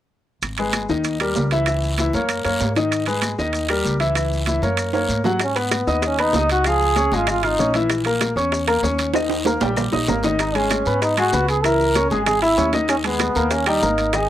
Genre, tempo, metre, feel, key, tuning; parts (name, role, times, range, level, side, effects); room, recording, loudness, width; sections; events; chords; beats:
latin, salsa; 193 BPM; 4/4; straight; G# minor; A4 = 440 Hz
upright bass; bass; 0.4-14.3 s; G#1 to G#2; -25 LUFS; equal
claves; percussion; 0.4-14.3 s; -31 LUFS; equal
congas; percussion; 0.4-14.3 s; -32 LUFS; left 1 dB
guiro; percussion; 0.4-14.3 s; -32 LUFS; left 1 dB
maracas; percussion; 0.4-14.3 s; -35 LUFS; left 1 dB
timbales; percussion; 0.4-14.3 s; -25 LUFS; right 9 dB
clear baby grand piano; accompaniment; 0.6-14.3 s; D#3 to E#6; -21 LUFS; left 2 dB
clear trombone; melody; 5.4-7.8, 10.4-14.3 s; B3 to A#4; -20 LUFS; right 1 dB
bongos; percussion; 5.4-14.3 s; -30 LUFS; left 7 dB
light reverb; dry, gritty hardware recording; -17 LUFS; side -12 dB against mid
0.4-5.4 A section; 5.4-14.3 B section
drum fill 4.9-5.4, 9.1-10.4
0.4 G#m; 1.0 D#7; 1.7 C#m; 2.3 F#; 2.9 G#m; 3.5 D#7; 4.2 C#m; 4.8 F#; 5.4 G#m; 6.7 C#add9; 7.9 A#dim; 9.1 D#; 10.4 G#m; 11.6 C#m; 12.9 D#sus4; 13.5 D#
| 0.42 0.74 1.05 1.36 | 1.67 1.98 2.29 2.61 | 2.92 3.23 3.54 3.85 | 4.16 4.47 4.79 5.10 | 5.41 5.72 6.03 6.34 | 6.65 6.97 7.28 7.59 | 7.90 8.21 8.52 8.84 | 9.15 9.46 9.77 10.08 | 10.39 10.71 11.02 11.33 | 11.64 11.96 12.27 12.58 | 12.89 13.20 13.52 13.83 | 14.14